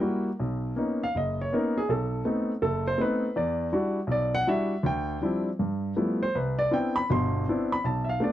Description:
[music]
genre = solo jazz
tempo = 162 BPM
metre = 4/4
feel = swing 65% on 8ths, rubato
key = unclear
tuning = A4 = 442 Hz
[part]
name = warm baby grand piano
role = solo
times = 0.0-8.3 s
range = F#1 to C6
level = -25 LUFS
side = equal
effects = none
[sound]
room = light reverb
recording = dry, close 1970s-style studio recording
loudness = -25 LUFS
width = side -12 dB against mid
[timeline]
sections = 0.4-8.3 A section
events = grand piano solo 0.4-8.3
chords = 0.4 Bmaj9; 1.9 B7b9; 3.4 Em9; 4.8 Dm11; 5.6 G13; 6.4 Cmaj9

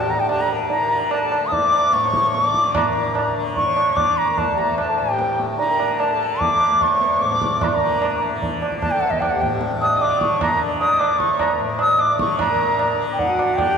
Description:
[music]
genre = indian classical, Hindustani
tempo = 149 BPM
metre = 3/4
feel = straight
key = unclear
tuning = A4 = 440 Hz
[part]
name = bansuri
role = melody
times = 0.0-13.8 s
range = Eb5 to Eb6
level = -19 LUFS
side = equal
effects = none
[part]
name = pedal harmonium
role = second line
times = 0.0-13.8 s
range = F#4 to Eb5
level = -28 LUFS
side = left 4 dB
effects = none
[part]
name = tanpura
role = drone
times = 0.0-13.8 s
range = D2 to D3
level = -28 LUFS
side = left 2 dB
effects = none
[part]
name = tabla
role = percussion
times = 0.3-13.7 s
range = none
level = -23 LUFS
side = right 3 dB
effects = none
[sound]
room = wet cathedral reverb, RT60 4.4 s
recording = recorded in a church or concert hall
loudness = -17 LUFS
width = side -6 dB against mid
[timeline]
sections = 0.0-2.8 A section; 2.8-12.4 B section; 12.4-13.8 A section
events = speeding up 0.0-13.8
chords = none

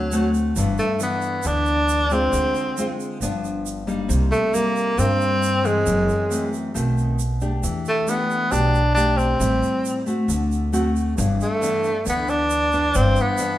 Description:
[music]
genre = bossa nova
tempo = 136 BPM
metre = 4/4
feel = straight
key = G major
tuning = A4 = 441 Hz
[part]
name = breathy tenor saxophone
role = melody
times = 0.0-13.6 s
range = F#3 to D4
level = -20 LUFS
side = equal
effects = none
[part]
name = nylon-string guitar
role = accompaniment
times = 0.0-13.6 s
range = F#2 to G4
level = -24 LUFS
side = left 2 dB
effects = none
[part]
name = upright bass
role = bass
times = 0.0-13.2 s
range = F#1 to G2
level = -23 LUFS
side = equal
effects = none
[part]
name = tube shaker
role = percussion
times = 0.1-13.6 s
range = none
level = -35 LUFS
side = right 7 dB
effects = none
[sound]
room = wet stone room reverb, RT60 1.4 s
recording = band playing live in one room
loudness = -18 LUFS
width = side -13 dB against mid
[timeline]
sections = 0.6-13.6 A section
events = none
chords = 0.0 D7; 0.6 G6; 2.3 Dm7b5; 3.2 G7; 4.1 Cm7; 5.9 F#m7b5; 6.8 B7b9; 7.6 Em7; 9.4 Am7; 10.3 D7; 11.2 G6

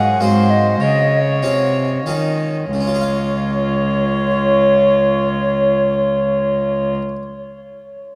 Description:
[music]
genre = classical, baroque-style sonata movement with continuo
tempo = 88-107 BPM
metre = 3/4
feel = straight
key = Db major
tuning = A4 = 440 Hz
[part]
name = dark violin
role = melody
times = 0.0-6.9 s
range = F4 to Db5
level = -28 LUFS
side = equal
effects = none
[part]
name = baroque flute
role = second line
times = 0.0-6.9 s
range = Db5 to Gb5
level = -20 LUFS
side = equal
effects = none
[part]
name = harpsichord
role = accompaniment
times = 0.0-7.2 s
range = Ab2 to F5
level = -27 LUFS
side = equal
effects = none
[part]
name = rich cello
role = bass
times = 0.0-6.9 s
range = Db2 to Eb3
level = -22 LUFS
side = equal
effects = none
[sound]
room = wet cathedral reverb, RT60 5.6 s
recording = in a vast, echoing space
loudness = -17 LUFS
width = mono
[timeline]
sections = 0.0-2.7 A section; 2.7-6.8 B section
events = slowing down 0.0-2.7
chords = 0.2 Ab7; 0.8 Db

